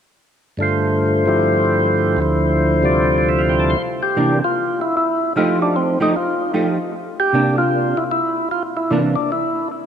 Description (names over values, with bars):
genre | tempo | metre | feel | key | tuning
jazz | 152 BPM | 4/4 | swing 64% on 8ths | C mixolydian | A4 = 441 Hz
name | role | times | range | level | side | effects
percussive tonewheel organ | melody | 0.6-9.7 s | D2 to C6 | -16 LUFS | equal | slow rotary speaker, tape echo
hollow-body jazz guitar | accompaniment | 4.2-9.1 s | C3 to G4 | -20 LUFS | right 2 dB | ensemble chorus
room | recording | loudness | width
wet plate reverb, RT60 3.3 s | dreamy mix soaked in reverb | -15 LUFS | side -8 dB against mid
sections
0.6-3.8 A section; 3.8-9.9 B section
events
none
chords
0.6 G7sus4; 2.2 Dm9; 3.8 C9; 5.4 F9; 6.9 C9